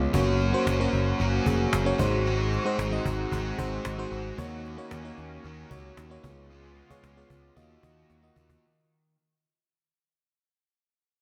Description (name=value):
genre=1980s-style pop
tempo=113 BPM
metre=4/4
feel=straight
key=Eb dorian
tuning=A4 = 442 Hz
part: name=FM electric piano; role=accompaniment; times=0.0-8.7 s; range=Ab3 to Eb5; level=-33 LUFS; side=equal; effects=slapback echo
part: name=crunchy overdriven guitar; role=accompaniment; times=0.0-9.1 s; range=Db3 to Ab4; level=-36 LUFS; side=equal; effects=subtle chorus
part: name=chorused pulse-width pad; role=sustained chords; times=0.0-8.6 s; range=Db3 to Gb4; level=-38 LUFS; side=equal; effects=none
part: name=picked electric bass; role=bass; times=0.0-8.6 s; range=F1 to Eb2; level=-32 LUFS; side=equal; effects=none
part: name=cajon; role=drums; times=0.1-8.6 s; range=none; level=-35 LUFS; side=equal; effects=none
room=moderate lush hall reverb, RT60 1.6 s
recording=big arena sound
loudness=-27 LUFS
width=mono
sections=0.0-8.6 A section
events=fade-out 0.0-8.6; drum fill 8.1-8.6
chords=0.1 Gb; 2.0 Ab7; 4.4 Ebm7; 6.2 Db7; 7.6 Ebmadd9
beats=| 0.14 0.67 1.20 1.73 | 2.26 2.79 3.32 3.85 | 4.38 4.92 5.45 5.98 | 6.51 7.04 7.57 8.10